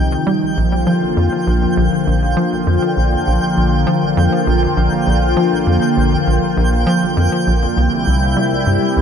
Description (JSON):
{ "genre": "ambient, sequencer-driven space music", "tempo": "100 BPM", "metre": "4/4", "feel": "straight", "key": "unclear", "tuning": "A4 = 443 Hz", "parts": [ { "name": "phased analog pad", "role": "sustained chords", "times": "0.0-9.0 s", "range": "C3 to F4", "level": "-16 LUFS", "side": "left 1 dB", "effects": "phaser, chorus" }, { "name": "tight sequencer bass", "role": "riff", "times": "0.0-9.0 s", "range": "Bb1 to G3", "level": "-16 LUFS", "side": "equal", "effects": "analog chorus, ping-pong delay" }, { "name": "twinkling granular texture", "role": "texture", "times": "0.0-9.0 s", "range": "G5", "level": "-23 LUFS", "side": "right 1 dB", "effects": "built-in reverb" } ], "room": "moderate huge ambient reverb, RT60 8.9 s", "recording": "none", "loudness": "-13 LUFS", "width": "side -7 dB against mid", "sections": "0.0-9.0 A section", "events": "fade-in on synth texture 0.0-9.0", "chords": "0.0 Cm; 0.6 Bb; 7.8 C7" }